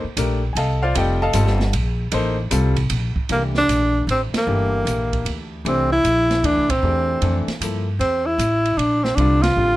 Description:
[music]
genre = modal jazz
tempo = 153 BPM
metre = 3/4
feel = swing 66% on 8ths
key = F mixolydian, C mixolydian from 3.3 s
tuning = A4 = 440 Hz
[part]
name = upright bass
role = bass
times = 0.0-9.8 s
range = F1 to G2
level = -21 LUFS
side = equal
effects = none
[part]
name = clear grand piano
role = accompaniment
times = 0.2-9.8 s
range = D3 to A5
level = -25 LUFS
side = left 2 dB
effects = none
[part]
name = open jazz drum kit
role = drums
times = 0.2-9.5 s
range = hi-hat, kick drum, ride cymbal, snare drum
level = -28 LUFS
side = right 3 dB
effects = none
[part]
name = breathy tenor saxophone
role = melody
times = 3.3-9.8 s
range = Bb3 to F4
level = -19 LUFS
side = equal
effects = none
[sound]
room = little or no reverb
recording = close, detailed microphones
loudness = -17 LUFS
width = side -16 dB against mid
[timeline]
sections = 0.0-3.3 A section; 3.3-9.8 B section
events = band accent 4.3, 6.6, 9.4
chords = 0.0 F13; 3.3 C9

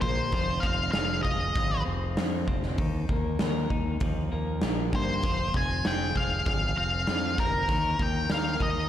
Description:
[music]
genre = quiet-loud alternative rock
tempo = 98 BPM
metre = 4/4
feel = straight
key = F minor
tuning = A4 = 440 Hz
[part]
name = octave-fuzz lead guitar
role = melody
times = 0.0-8.9 s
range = Bb4 to Ab5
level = -29 LUFS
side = left 1 dB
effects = distortion, slapback echo
[part]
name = twelve-string electric guitar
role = arpeggios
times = 0.0-8.9 s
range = Eb3 to Bb4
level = -34 LUFS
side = left 3 dB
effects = spring reverb
[part]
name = growling fingered electric bass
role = bass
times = 0.0-8.9 s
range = F1 to G2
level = -31 LUFS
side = equal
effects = overdrive
[part]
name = big rock drum kit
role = drums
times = 0.0-8.7 s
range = hi-hat, kick drum, snare drum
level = -29 LUFS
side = right 1 dB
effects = none
[sound]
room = moderate concert hall reverb, RT60 2.2 s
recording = big arena sound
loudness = -25 LUFS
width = side -11 dB against mid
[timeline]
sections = 0.0-8.9 A section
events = none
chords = 0.3 Fm; 2.8 Ebsus2; 5.2 Fm; 7.7 Ebsus2

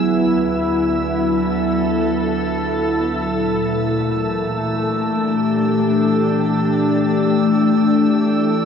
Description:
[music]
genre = ambient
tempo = 75 BPM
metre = 4/4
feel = straight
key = D major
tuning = A4 = 440 Hz
[part]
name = glassy FM pad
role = sustained chords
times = 0.0-8.7 s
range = D2 to A4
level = -16 LUFS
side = left 1 dB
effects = ensemble chorus, built-in reverb
[part]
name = drifting glass-harmonics texture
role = texture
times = 0.0-8.7 s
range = E6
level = -29 LUFS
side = right 3 dB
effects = chorus, built-in reverb
[sound]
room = wet shimmer reverb, RT60 6.9 s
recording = nothing above 7.7 kHz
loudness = -16 LUFS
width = side -7 dB against mid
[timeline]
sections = 0.0-8.7 A section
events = fade-in on synth texture 0.0-8.7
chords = 0.0 D; 3.2 Bb; 6.4 G5

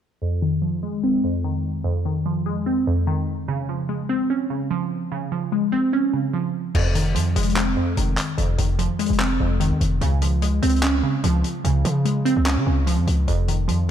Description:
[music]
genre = hip hop, trap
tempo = 147 BPM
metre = 4/4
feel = half-time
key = F minor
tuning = A4 = 439 Hz
[part]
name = glassy wavetable pluck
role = accompaniment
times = 0.2-13.9 s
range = F2 to Db4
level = -21 LUFS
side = right 1 dB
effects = chorus, low-pass filter
[part]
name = hard-hitting 808-style bass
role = bass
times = 6.7-13.9 s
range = F1 to Db3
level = -21 LUFS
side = equal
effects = none
[part]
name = vintage drum kit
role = drums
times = 6.7-13.8 s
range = crash cymbal, handclaps, hi-hat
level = -28 LUFS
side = left 2 dB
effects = none
[sound]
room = light reverb, small room ambience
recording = dark, warm production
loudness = -19 LUFS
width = side -9 dB against mid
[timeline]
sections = 0.2-6.7 A section; 6.7-13.9 B section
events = filter sweep on synth pluck 0.2-6.7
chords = 0.2 Fm7; 3.5 Dbmaj7; 6.7 Fm7; 10.0 Dbmaj7; 13.3 F7(no3)

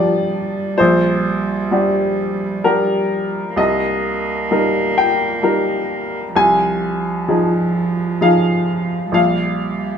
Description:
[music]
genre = neoclassical piano and strings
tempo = 65 BPM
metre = 3/4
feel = rubato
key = C minor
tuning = A4 = 439 Hz
[part]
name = warm cello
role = second line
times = 0.0-10.0 s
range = F3 to Bb3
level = -22 LUFS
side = right 4 dB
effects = none
[part]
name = bright upright piano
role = accompaniment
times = 0.0-10.0 s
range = Bb1 to Ab5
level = -16 LUFS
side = left 1 dB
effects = none
[sound]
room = wet stone room reverb, RT60 1.1 s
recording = band playing live in one room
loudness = -15 LUFS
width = side -7 dB against mid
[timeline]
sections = 0.0-10.0 A section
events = none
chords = 0.0 Bb6; 0.8 Gm/Bb; 3.6 Cm7; 6.4 Fm7/C; 9.1 Bb5

